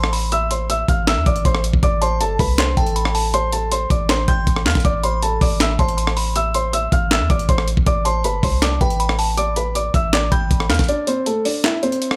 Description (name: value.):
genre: hip hop, trap.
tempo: 159 BPM.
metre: 4/4.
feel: half-time.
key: A minor.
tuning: A4 = 439 Hz.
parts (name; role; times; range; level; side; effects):
dark baby grand piano; melody; 0.0-12.2 s; A3 to G6; -24 LUFS; equal; none.
delicate synth tine bell; second line; 0.0-10.8 s; G5 to C6; -29 LUFS; equal; chorus, digital delay.
warm 808-style bass; bass; 0.0-10.9 s; G1 to E2; -23 LUFS; equal; none.
breakbeat sampler-style drum kit; drums; 0.0-12.2 s; handclaps, hi-hat, kick drum, rim click, snare drum; -22 LUFS; equal; none.
room: little or no reverb.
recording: none.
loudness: -18 LUFS.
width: mono.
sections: 0.0-10.9 A section; 10.9-12.2 B section.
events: kick muted 10.9-12.2.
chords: 0.0 Am; 1.8 F (rootless); 4.8 Am; 7.9 G; 10.9 Am.